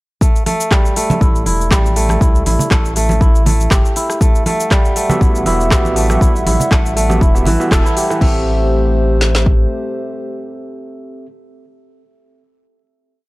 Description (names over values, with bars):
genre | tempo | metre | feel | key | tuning
afro house | 120 BPM | 4/4 | swing 54% on 16ths | A dorian | A4 = 440 Hz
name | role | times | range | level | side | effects
kora | arpeggios | 0.2-10.2 s | E3 to A4 | -19 LUFS | right 1 dB | sidechain pumping, analog delay
afro-pop drum kit | drums | 0.2-9.6 s | kick drum, snare drum | -13 LUFS | equal | none
afro-pop drum kit | drums | 0.2-8.3 s | crash cymbal, handclaps, hi-hat, rim click, shaker | -21 LUFS | left 1 dB | none
congas | percussion | 0.5-7.6 s | none | -20 LUFS | right 2 dB | none
round analog bass | bass | 1.2-9.7 s | E1 to C2 | -17 LUFS | equal | tube saturation, sidechain pumping
dark analog pad | sustained chords | 4.2-11.3 s | G3 to F#5 | -22 LUFS | left 1 dB | chorus, vintage 12-bit sampler grit, sidechain pumping
overdriven tine electric piano | stabs | 5.1-11.3 s | B3 to E5 | -23 LUFS | right 2 dB | sidechain pumping, analog delay
room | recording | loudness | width
little or no reverb | dry, gritty hardware recording | -11 LUFS | side -20 dB against mid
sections
0.2-8.2 drop; 8.2-12.2 final chord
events
drop 0.2-8.2; band accent 7.7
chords
0.2 A7(no3); 4.2 Emadd9; 8.2 Am7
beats
| 0.21 0.71 1.21 1.71 | 2.21 2.71 3.21 3.71 | 4.21 4.71 5.21 5.71 | 6.21 6.71 7.21 7.71 | 8.21 8.71 9.21 9.71 | 10.21 10.71 11.21